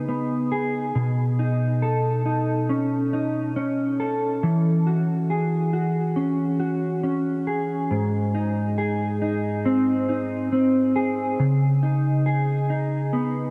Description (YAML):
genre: dream pop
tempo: 69 BPM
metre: 4/4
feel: straight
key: E major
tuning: A4 = 440 Hz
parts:
  - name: mellow electric guitar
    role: solo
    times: 0.0-13.5 s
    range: G#2 to A4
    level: -23 LUFS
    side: equal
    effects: analog chorus, delay
room: wet huge ambient reverb, RT60 4.0 s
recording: dark, warm production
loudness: -23 LUFS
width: mono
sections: 0.0-13.5 A section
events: none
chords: 0.0 C#sus2; 1.0 B9; 4.4 E69; 7.9 G#; 11.4 C#sus2